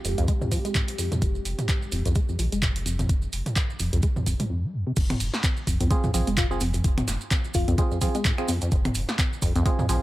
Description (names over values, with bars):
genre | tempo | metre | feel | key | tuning
acid house | 128 BPM | 4/4 | swing 57% on 16ths | F minor | A4 = 439 Hz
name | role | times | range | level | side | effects
dark analog pad | sustained chords | 0.0-4.5 s | Ab3 to G4 | -37 LUFS | right 1 dB | chorus, sidechain pumping
deep acid bass | riff | 0.0-10.0 s | F2 to Ab3 | -28 LUFS | equal | overdrive, analog chorus, cassette tape
warm sub bass | bass | 0.0-10.0 s | Eb1 to C2 | -28 LUFS | equal | tube saturation, sidechain pumping
punchy analog drum machine | drums | 0.0-10.0 s | congas, crash cymbal, finger snaps, handclaps, hi-hat, snare drum, toms | -29 LUFS | equal | none
maracas | percussion | 0.1-10.0 s | none | -37 LUFS | right 5 dB | none
electronic kick drum | drums | 0.3-9.8 s | none | -24 LUFS | equal | overdrive
percussive organ stab | stabs | 5.9-10.0 s | C4 to Ab4 | -31 LUFS | right 3 dB | chorus, dub echo
bell-like FM electric piano | melody | 6.4-7.9 s | F4 | -36 LUFS | left 4 dB | chorus, dub echo
room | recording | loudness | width
little or no reverb | none | -22 LUFS | side -16 dB against mid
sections
0.0-5.0 A section; 5.0-10.0 B section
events
break 4.5-5.0; drop 5.0-10.0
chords
0.0 Fm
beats
0.28 0.75 | 1.22 1.69 2.16 2.62 | 3.09 3.56 4.03 4.50 | 4.97 5.44 5.91 6.38 | 6.84 7.31 7.78 8.25 | 8.72 9.19 9.66